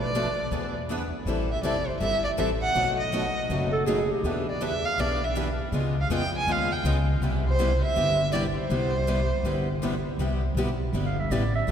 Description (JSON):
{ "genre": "acoustic string swing (jazz manouche)", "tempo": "161 BPM", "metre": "4/4", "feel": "swing 63% on 8ths", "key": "C major", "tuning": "A4 = 440 Hz", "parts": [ { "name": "warm violin", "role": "melody", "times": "0.0-10.0 s", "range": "C5 to Ab5", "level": "-28 LUFS", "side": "right 1 dB", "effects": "none" }, { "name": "upright bass", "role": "bass", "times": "0.0-11.7 s", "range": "F1 to F2", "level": "-28 LUFS", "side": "equal", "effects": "none" }, { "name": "picked steel-string acoustic guitar", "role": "accompaniment", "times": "0.1-11.7 s", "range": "B2 to A4", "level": "-30 LUFS", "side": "left 3 dB", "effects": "none" }, { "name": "picked swing-style acoustic guitar", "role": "accompaniment", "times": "0.1-11.7 s", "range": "B2 to B4", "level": "-35 LUFS", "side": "right 2 dB", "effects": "none" }, { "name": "mellow clarinet", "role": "second line", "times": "3.7-4.4, 11.1-11.7 s", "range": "G4 to F5", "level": "-31 LUFS", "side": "right 3 dB", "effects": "none" } ], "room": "wet cathedral reverb, RT60 4.8 s", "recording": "recorded in a church or concert hall", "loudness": "-24 LUFS", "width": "side -8 dB against mid", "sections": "0.0-10.2 A section; 10.2-11.7 B section", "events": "clarinet solo 10.2-11.7", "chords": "0.0 Bm7b5; 0.5 E7; 1.3 Am7; 2.8 B7; 4.2 Em7; 5.7 Db7; 7.2 Cmaj7" }